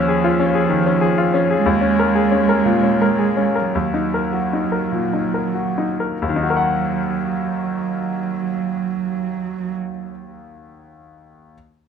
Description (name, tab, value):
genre	neoclassical piano and strings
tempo	45-64 BPM (dotted quarters)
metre	6/8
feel	rubato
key	Eb minor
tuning	A4 = 440 Hz
part	dark cello	second line	0.0-9.8 s	F3 to Ab3	-21 LUFS	right 9 dB	tape echo
part	bright concert grand piano	accompaniment	0.0-11.6 s	Eb2 to Gb5	-19 LUFS	left 5 dB	none
room	wet studio ambience, RT60 0.5 s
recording	rough home demo mix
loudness	-17 LUFS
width	side -7 dB against mid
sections	0.0-6.2 A section; 6.2-11.5 B section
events	slowing down 0.7-6.2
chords	0.0 Dbadd9/Eb; 1.7 Bbm7/Eb; 3.7 Ebm